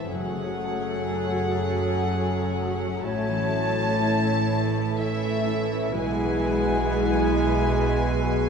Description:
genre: cinematic, emotional film score for orchestra.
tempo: 62 BPM.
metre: 3/4.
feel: rubato.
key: E major.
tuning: A4 = 438 Hz.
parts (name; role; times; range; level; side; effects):
warm studio violin section; melody; 0.0-8.5 s; E5 to A5; -31 LUFS; left 2 dB; none.
hollow concert flute; second line; 0.0-8.5 s; A4 to C#5; -32 LUFS; equal; none.
warm symphonic violin section; second line; 0.0-8.5 s; B3 to G#4; -33 LUFS; left 3 dB; none.
dark symphonic viola section; accompaniment; 0.0-8.5 s; E3 to A3; -30 LUFS; right 4 dB; none.
mellow French horn section; sustained chords; 0.0-8.5 s; E3 to A3; -29 LUFS; left 3 dB; none.
concert harp; arpeggios; 0.0-8.5 s; F#2 to G#5; -35 LUFS; left 6 dB; none.
rich studio cello section; bass; 0.0-8.5 s; F#2 to B2; -32 LUFS; right 3 dB; none.
warm chamber double bass section; bass; 0.0-8.5 s; F#1 to B1; -30 LUFS; right 3 dB; none.
room: wet scoring stage reverb, RT60 1.5 s.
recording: minimal, uncompressed stereo recording.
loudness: -22 LUFS.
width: side -6 dB against mid.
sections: 0.0-8.5 A section.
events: none.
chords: 0.1 F#madd9; 3.0 A; 5.9 E/B.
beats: | 0.10 1.09 2.07 | 3.04 4.01 4.98 | 5.93 6.89 7.83.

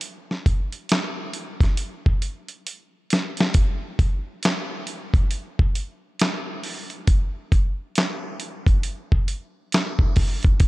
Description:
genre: R&B.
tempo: 68 BPM.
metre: 4/4.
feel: swing 62% on 16ths.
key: none.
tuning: none.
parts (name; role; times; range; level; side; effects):
dusty soul sampler-style drum kit; drums; 0.0-10.7 s; handclaps, hi-hat, kick drum, snare drum; -20 LUFS; equal; none.
room: light reverb.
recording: dark, warm production.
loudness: -21 LUFS.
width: side -20 dB against mid.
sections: 0.0-10.7 A section.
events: drum fill 2.7-3.5.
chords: none.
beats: | 0.01 0.90 1.78 2.66 | 3.54 4.43 5.31 6.19 | 7.07 7.96 8.84 9.72 | 10.60.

